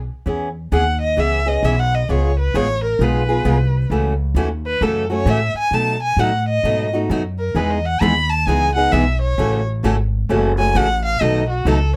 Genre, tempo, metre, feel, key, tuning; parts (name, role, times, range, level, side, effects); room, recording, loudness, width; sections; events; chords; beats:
acoustic string swing (jazz manouche); 132 BPM; 4/4; swing 63% on 8ths; E major; A4 = 439 Hz
upright bass; bass; 0.0-12.0 s; F#1 to B2; -22 LUFS; equal
picked steel-string acoustic guitar; accompaniment; 0.3-11.8 s; B2 to G#4; -23 LUFS; equal
warm violin; melody; 0.7-12.0 s; F#4 to B5; -23 LUFS; equal
picked plugged-in steel-string acoustic guitar; accompaniment; 7.6-11.8 s; B2 to A4; -26 LUFS; equal
little or no reverb; close, detailed microphones; -18 LUFS; mono
0.3-12.0 A section
violin solo 0.3-12.0
0.3 E6; 2.1 C#7; 3.9 F#m7/C#; 5.7 B7; 7.6 Emaj7; 9.4 A6; 11.2 B9
| 0.26 0.72 1.17 1.63 | 2.08 2.54 3.00 3.45 | 3.91 4.36 4.82 5.27 | 5.73 6.18 6.64 7.10 | 7.55 8.01 8.46 8.92 | 9.38 9.83 10.29 10.74 | 11.20 11.66